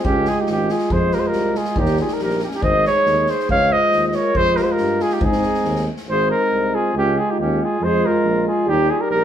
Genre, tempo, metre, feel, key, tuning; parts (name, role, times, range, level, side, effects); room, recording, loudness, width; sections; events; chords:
balkan folk, Balkan brass band; 139 BPM; 2/4; straight; Ab major; A4 = 440 Hz
mellow cornet; melody; 0.0-9.2 s; G4 to F5; -19 LUFS; right 1 dB
mellow clarinet; second line; 0.0-9.2 s; Db4 to Db5; -25 LUFS; left 2 dB
mellow euphonium; accompaniment; 0.0-9.2 s; C4 to F4; -26 LUFS; left 4 dB
mellow euphonium; accompaniment; 0.0-9.2 s; G3 to Ab3; -25 LUFS; right 5 dB
street-band drum kit; percussion; 0.0-6.0 s; kick drum, snare drum; -26 LUFS; equal
mellow tuba; bass; 0.1-9.2 s; Ab1 to Ab2; -25 LUFS; equal
wet studio reverb, RT60 0.8 s; band playing live in one room; -16 LUFS; side -9 dB against mid
0.0-6.1 A section; 6.1-9.2 A section
0.0 Db; 0.9 Fm; 1.8 Eb; 2.6 Ab5; 3.5 Db; 4.3 Fm; 5.2 Ab; 6.9 Db; 7.8 Fm; 8.7 Eb